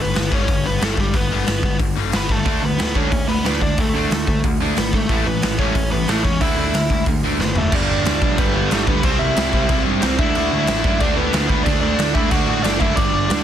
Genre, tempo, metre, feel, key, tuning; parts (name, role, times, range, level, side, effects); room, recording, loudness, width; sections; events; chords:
punk rock; 182 BPM; 4/4; straight; A4 = 440 Hz
biting lead guitar; melody; 0.0-13.4 s; G3 to F#5; -23 LUFS; equal; overdrive
distorted electric guitar; riff; 0.0-13.4 s; G2 to D4; -25 LUFS; left 12 dB; distortion
fuzz picked electric bass; bass; 0.0-13.4 s; F#1 to A2; -24 LUFS; equal; overdrive
raw garage drum kit; drums; 0.2-13.4 s; crash cymbal, hi-hat, kick drum, snare drum, toms; -20 LUFS; equal
overdriven semi-hollow guitar; riff; 2.5-13.4 s; G2 to D4; -24 LUFS; right 12 dB
distorted electric guitar; riff; 7.7-13.4 s; G2 to D4; -26 LUFS; right 1 dB; distortion
little or no reverb; dense, heavily limited modern master; -16 LUFS; side -10 dB against mid
0.0-7.7 A section; 7.7-13.4 B section
drum fill 7.4-7.7
0.0 G; 2.5 D5; 5.1 A; 6.4 D7; 7.7 G; 9.0 C; 10.2 D